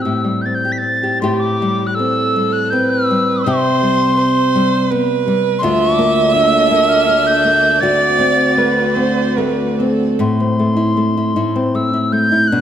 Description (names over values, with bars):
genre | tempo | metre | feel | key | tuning
celtic folk, Celtic slow air | 71-86 BPM | 3/4 | rubato | A dorian | A4 = 436 Hz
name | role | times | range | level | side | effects
mellow tin whistle | melody | 0.0-12.6 s | C6 to B6 | -18 LUFS | left 1 dB | none
nylon-string guitar | accompaniment | 0.0-12.6 s | D2 to G4 | -16 LUFS | left 1 dB | none
clear viola | second line | 1.2-10.2 s | G4 to E5 | -17 LUFS | right 5 dB | none
bright studio string section | sustained chords | 5.6-10.2 s | D3 to D5 | -23 LUFS | equal | none
room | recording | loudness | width
moderate concert hall reverb, RT60 2.0 s | none | -12 LUFS | side -9 dB against mid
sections
0.0-1.2 A section; 1.2-10.2 B section; 10.2-12.6 A section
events
none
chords
0.0 Am7; 3.5 C5; 5.6 Bbmaj7/D; 7.8 D7; 10.2 Am